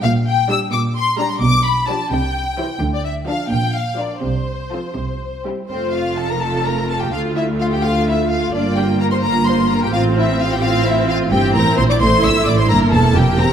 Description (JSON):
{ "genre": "quick classical-period movement for string orchestra", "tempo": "86 BPM (dotted quarters)", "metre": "6/8", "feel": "straight", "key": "F major", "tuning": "A4 = 440 Hz", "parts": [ { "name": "rich studio violin section", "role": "melody", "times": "0.0-13.5 s", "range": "C5 to E6", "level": "-20 LUFS", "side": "left 4 dB", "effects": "none" }, { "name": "rich studio cello section", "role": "bass", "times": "0.0-13.5 s", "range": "D2 to D3", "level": "-22 LUFS", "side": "right 1 dB", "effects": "none" }, { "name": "rich studio double bass section", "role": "bass", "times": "0.0-13.5 s", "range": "E1 to D2", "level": "-21 LUFS", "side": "right 2 dB", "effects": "none" }, { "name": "warm studio violin section", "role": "second line", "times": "0.5-13.5 s", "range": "C4 to E5", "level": "-24 LUFS", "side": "left 2 dB", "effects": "none" }, { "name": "rich studio viola section", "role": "accompaniment", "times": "0.5-13.5 s", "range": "E3 to G4", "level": "-21 LUFS", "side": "right 3 dB", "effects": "none" } ], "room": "moderate scoring stage reverb, RT60 1.4 s", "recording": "none", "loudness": "-15 LUFS", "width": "side -8 dB against mid", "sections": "0.0-5.7 A section; 5.7-13.5 B section", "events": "none", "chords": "0.0 Gm/Bb; 1.4 G7/B; 2.1 C; 2.8 Dm; 3.5 Bb; 4.2 F/C; 5.0 C; 5.7 F; 7.1 Dm; 8.5 Gm7; 9.9 F/A; 11.3 C7/G; 12.0 Bbmaj9#11/A; 12.7 C7", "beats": "| 0.03 0.73 | 1.42 2.11 | 2.81 3.51 | 4.24 4.97 | 5.70 6.41 | 7.12 7.83 | 8.54 9.23 | 9.93 10.62 | 11.32 12.01 | 12.70 13.39" }